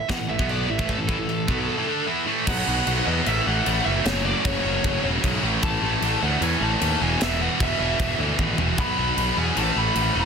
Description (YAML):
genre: heavy metal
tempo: 152 BPM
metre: 4/4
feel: straight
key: unclear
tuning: A4 = 441 Hz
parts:
  - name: high-gain lead guitar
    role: melody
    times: 0.0-10.3 s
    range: A4 to B5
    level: -28 LUFS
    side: equal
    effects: distortion, tape echo
  - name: high-gain distorted guitar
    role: riff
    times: 0.1-10.3 s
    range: E2 to E4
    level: -27 LUFS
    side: left 14 dB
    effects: distortion
  - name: high-gain distorted guitar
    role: riff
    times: 0.1-10.3 s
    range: E2 to E4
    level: -26 LUFS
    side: right 15 dB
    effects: distortion
  - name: fuzz picked electric bass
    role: bass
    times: 0.1-10.3 s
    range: E1 to E2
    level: -26 LUFS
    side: equal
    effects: overdrive
  - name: tight metal drum kit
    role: drums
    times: 0.1-10.0 s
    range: china cymbal, crash cymbal, kick drum, snare drum, toms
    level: -28 LUFS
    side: left 1 dB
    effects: none
room: light reverb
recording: dense, heavily limited modern master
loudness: -20 LUFS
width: side -6 dB against mid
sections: 0.0-2.5 A section; 2.5-10.3 B section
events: half time 2.5-10.3; drum fill 8.4-8.8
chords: 0.0 A5; 2.5 B5; 3.3 A5; 4.1 F#5; 5.4 A5; 7.0 E5; 8.8 B5; 9.6 A5